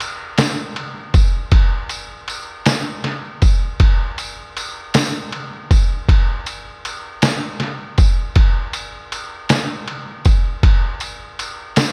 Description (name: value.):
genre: gospel.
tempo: 53 BPM (dotted quarters).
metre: 6/8.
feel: straight.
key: none.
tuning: none.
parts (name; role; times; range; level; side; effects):
lo-fi sampler-style drum kit; drums; 0.0-11.9 s; kick drum, ride cymbal, snare drum; -19 LUFS; equal; none.
tambourine; percussion; 0.0-11.9 s; none; -33 LUFS; equal; none.
room: light reverb.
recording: none.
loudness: -18 LUFS.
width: mono.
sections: 0.0-11.9 A section.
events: none.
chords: none.